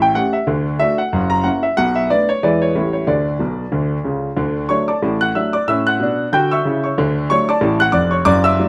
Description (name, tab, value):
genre	jazz, stride piano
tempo	185 BPM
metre	4/4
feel	swing 58% on 8ths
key	D major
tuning	A4 = 440 Hz
part	clear grand piano	solo	0.0-8.7 s	F1 to G6	-17 LUFS	equal	none
room	moderate studio reverb, RT60 0.7 s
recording	faint mains hum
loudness	-17 LUFS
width	mono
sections	0.0-4.4 A section; 4.4-8.7 A section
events	grand piano fill 3.4-4.4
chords	0.5 D; 1.1 F#7; 1.8 Bm7; 2.4 E7; 2.7 A7; 3.1 Bmadd9; 4.4 D; 5.7 A7; 7.0 D